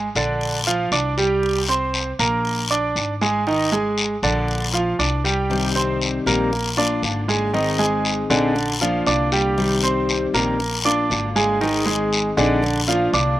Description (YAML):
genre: latin, Cuban son and guajira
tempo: 118 BPM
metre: 4/4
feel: straight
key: unclear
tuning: A4 = 440 Hz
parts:
  - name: bright concert grand piano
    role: arpeggios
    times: 0.0-13.3 s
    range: D3 to D6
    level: -20 LUFS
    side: right 2 dB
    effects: slapback echo
  - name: upright bass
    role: bass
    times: 0.0-13.4 s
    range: Ab1 to C2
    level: -26 LUFS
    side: left 1 dB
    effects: none
  - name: guiro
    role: percussion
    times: 0.2-13.4 s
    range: none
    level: -25 LUFS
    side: left 4 dB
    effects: none
  - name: picked steel-string acoustic guitar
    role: accompaniment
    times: 5.5-13.4 s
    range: C3 to Ab4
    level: -23 LUFS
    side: left 4 dB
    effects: slapback echo
room: little or no reverb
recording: recorded outdoors, with no room sound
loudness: -18 LUFS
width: side -14 dB against mid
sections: 0.0-13.4 A section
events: none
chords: 0.4 Bb; 1.4 C5; 2.4 Bb; 3.5 Ab5; 4.5 Bb; 5.5 Cm; 6.5 Bb; 7.5 Ab; 8.6 Bb; 9.6 Cm; 10.6 Bb; 11.6 Ab; 12.6 Bb